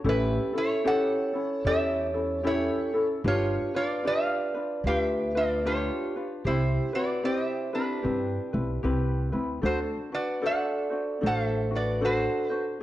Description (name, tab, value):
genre	Hawaiian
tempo	75 BPM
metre	4/4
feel	swing 62% on 8ths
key	D major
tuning	A4 = 440 Hz
part	ukulele	accompaniment	0.0-12.8 s	C4 to C5	-30 LUFS	left 3 dB	none
part	upright bass	bass	0.0-12.3 s	G1 to G2	-30 LUFS	equal	tube saturation
part	metal-body resonator slide guitar	melody	0.1-12.6 s	D4 to F#5	-29 LUFS	right 1 dB	none
part	vibraphone with soft mallets	second line	0.1-12.6 s	G4 to D5	-32 LUFS	right 2 dB	none
room	moderate recital hall reverb, RT60 1.6 s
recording	worn, warbling old tape, cassette tape, warbly pitch drift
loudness	-25 LUFS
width	side -14 dB against mid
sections	0.0-12.8 A section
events	none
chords	0.0 A7; 3.2 G7; 6.4 Cmaj7; 9.6 D7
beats	| 0.05 0.85 1.65 2.45 | 3.25 4.05 4.85 5.65 | 6.45 7.25 8.04 8.84 | 9.64 10.43 11.23 12.02 | 12.82